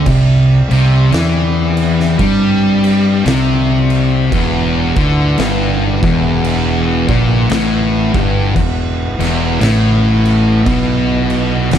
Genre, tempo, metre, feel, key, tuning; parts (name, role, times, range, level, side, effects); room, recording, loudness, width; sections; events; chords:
stoner and doom metal; 57 BPM; 4/4; swing 61% on 8ths; E minor; A4 = 440 Hz
mellow tonewheel organ; sustained chords; 0.0-11.8 s; C4 to G5; -25 LUFS; right 1 dB; slow rotary speaker
sludgy distorted guitar; riff; 0.0-11.8 s; E2 to G3; -20 LUFS; equal; overdrive
thick fuzz guitar; riff; 0.0-11.8 s; E2 to G3; -16 LUFS; left 6 dB; distortion
thick fuzz guitar; riff; 0.0-11.8 s; E2 to G3; -17 LUFS; right 7 dB; distortion
fuzz fingered electric bass; bass; 0.0-11.8 s; E1 to G2; -18 LUFS; right 1 dB; overdrive
oversized low-tuned drum kit; drums; 0.1-11.8 s; crash cymbal, kick drum, snare drum; -20 LUFS; right 1 dB
small room ambience; dark, warm production; -11 LUFS; side -9 dB against mid
0.0-11.8 A section
0.0 C5; 4.3 Em